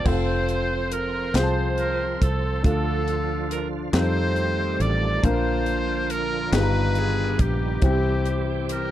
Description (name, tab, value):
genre	slow gospel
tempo	46 BPM (dotted quarters)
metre	6/8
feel	straight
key	F major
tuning	A4 = 440 Hz
part	bright alto saxophone	melody	0.0-8.8 s	G4 to D5	-30 LUFS	right 4 dB	none
part	trumpet with metal mute	melody	0.0-8.9 s	G4 to D5	-30 LUFS	left 3 dB	none
part	warm concert grand piano	accompaniment	0.0-8.9 s	G2 to A#5	-27 LUFS	left 3 dB	none
part	bright tonewheel organ	sustained chords	0.0-8.9 s	D3 to C5	-32 LUFS	right 6 dB	slow rotary speaker, chorus vibrato
part	fingered electric bass	bass	0.1-8.9 s	F1 to F2	-25 LUFS	equal	none
part	crisp fusion drum kit	drums	0.1-8.9 s	crash cymbal, hi-hat, kick drum, snare drum	-24 LUFS	equal	none
part	group handclap	percussion	1.4-6.9 s	none	-33 LUFS	left 5 dB	none
room	little or no reverb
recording	dry, close 1970s-style studio recording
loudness	-21 LUFS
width	side -12 dB against mid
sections	0.1-8.9 A section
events	none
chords	0.1 F; 2.6 Dm; 3.9 F9; 5.2 Bb; 6.5 G7alt; 7.8 C